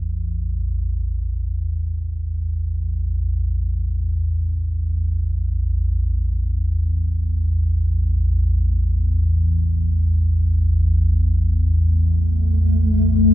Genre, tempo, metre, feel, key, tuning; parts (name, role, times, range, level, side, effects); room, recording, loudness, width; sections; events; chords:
dark ambient drone; free time; A4 = 439 Hz
deep rumbling drone; drone; 0.0-13.3 s; A1 to E2; -18 LUFS; equal; built-in reverb, phaser, wide subtle chorus
granular cloud pad; sustained chords; 12.5-13.3 s; A3; -19 LUFS; left 4 dB; built-in reverb
wet cathedral reverb, RT60 5.9 s; -18 LUFS; side -14 dB against mid
0.0-13.3 A section
0.0 A5